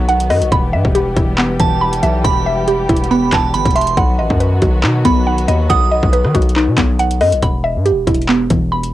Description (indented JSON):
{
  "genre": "hip hop, drill",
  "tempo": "139 BPM",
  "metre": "4/4",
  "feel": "half-time",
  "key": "E harmonic minor",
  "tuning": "A4 = 440 Hz",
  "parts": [
    { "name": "muted studio string section", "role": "sustained chords", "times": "0.0-7.4 s", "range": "D#3 to G4", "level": "-23 LUFS", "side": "left 1 dB", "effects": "cassette tape" },
    { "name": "mallet-like synth pluck", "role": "arpeggios", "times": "0.0-8.9 s", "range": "E3 to B5", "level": "-16 LUFS", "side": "equal", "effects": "chorus, phaser, low-pass filter, cassette tape, analog delay" },
    { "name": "hard-hitting 808-style bass", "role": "bass", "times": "0.0-8.9 s", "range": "E1 to D#3", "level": "-17 LUFS", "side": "equal", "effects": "none" },
    { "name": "drill drum kit", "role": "drums", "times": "0.1-8.9 s", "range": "handclaps, hi-hat, kick drum, rim click", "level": "-18 LUFS", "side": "left 1 dB", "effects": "overdrive" },
    { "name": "glassy synth bell", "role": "second line", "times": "1.6-6.5 s", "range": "A5 to D#6", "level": "-20 LUFS", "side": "right 8 dB", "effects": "chorus, cassette tape, analog delay" }
  ],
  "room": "light reverb",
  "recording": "home recording on cassette",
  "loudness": "-12 LUFS",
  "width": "side -14 dB against mid",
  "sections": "0.0-7.4 A section; 7.4-8.9 B section",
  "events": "none",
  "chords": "0.0 B; 0.5 Em; 4.0 B; 7.4 Em"
}